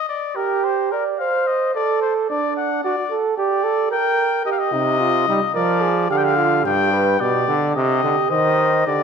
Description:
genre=classical, imitative canzona for brass ensemble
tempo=109 BPM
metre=4/4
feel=straight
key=C minor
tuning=A4 = 440 Hz
part: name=clear trumpet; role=melody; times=0.0-9.0 s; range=Bb4 to G5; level=-21 LUFS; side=left 7 dB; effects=none
part: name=mellow flugelhorn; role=second line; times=0.4-9.0 s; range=D4 to D5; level=-20 LUFS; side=right 6 dB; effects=none
part: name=brilliant trombone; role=accompaniment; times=4.7-9.0 s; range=G2 to G3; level=-20 LUFS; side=right 2 dB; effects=none
room=moderate scoring stage reverb, RT60 1.8 s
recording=minimal, uncompressed stereo recording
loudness=-17 LUFS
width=side -6 dB against mid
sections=0.0-9.0 A section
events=none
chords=0.1 Gm; 1.2 Adim/C; 2.3 D; 3.4 Gm; 4.5 Cm; 5.6 Ddim/F; 6.7 G; 7.8 Cm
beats=| 0.10 0.64 1.20 1.75 | 2.30 2.84 3.38 3.92 | 4.46 5.00 5.55 6.10 | 6.65 7.20 7.75 8.31 | 8.87

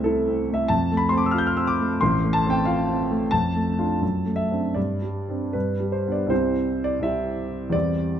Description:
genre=classical, romantic character piece for solo piano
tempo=76-96 BPM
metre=2/4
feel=rubato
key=C major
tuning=A4 = 440 Hz
part: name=warm grand piano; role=solo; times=0.0-8.2 s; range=A1 to G6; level=-21 LUFS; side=equal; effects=none
room=wet recital hall reverb, RT60 1.5 s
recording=close, detailed microphones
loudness=-21 LUFS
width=side -9 dB against mid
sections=0.0-6.3 A section; 6.3-8.2 B section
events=none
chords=0.0 Am/C; 0.7 F; 2.0 F/A; 3.3 Dm/F; 4.0 D7/F#; 4.8 Gsus4; 5.5 G; 6.3 C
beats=0.06 | 0.70 1.34 | 2.00 2.65 | 3.32 4.01 | 4.76 5.54 | 6.31 7.03 | 7.74

